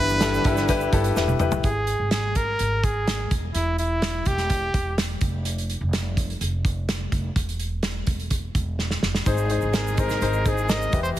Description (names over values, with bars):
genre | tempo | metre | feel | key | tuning
piano-driven pop | 126 BPM | 4/4 | straight | unclear | A4 = 440 Hz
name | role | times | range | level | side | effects
clear trumpet | melody | 0.0-5.0, 9.3-11.1 s | E4 to Eb5 | -26 LUFS | right 1 dB | ping-pong delay
mellow French horn section | second line | 0.0-1.4 s | D3 to D4 | -30 LUFS | right 1 dB | ping-pong delay
warm grand piano | accompaniment | 0.0-1.7, 9.3-11.2 s | G2 to C5 | -26 LUFS | left 6 dB | none
warm studio string section | sustained chords | 0.0-1.6, 9.3-11.2 s | B2 to Ab4 | -33 LUFS | equal | none
upright bass | bass | 0.0-11.2 s | E1 to Ab1 | -27 LUFS | right 1 dB | none
egg shaker | percussion | 0.1-1.6, 9.3-11.2 s | none | -42 LUFS | right 14 dB | none
loose indie drum kit | drums | 0.2-11.2 s | hi-hat, kick drum, snare drum, toms | -25 LUFS | right 1 dB | none
room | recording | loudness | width
light reverb, studio reverb | heavily compressed radio sound | -21 LUFS | side -13 dB against mid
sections
0.0-1.6 A section; 1.6-11.2 B section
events
drum fill 1.2-1.6, 8.8-9.3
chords
0.0 G6; 1.6 Absus2; 3.3 Em; 5.2 N.C.; 9.3 Ab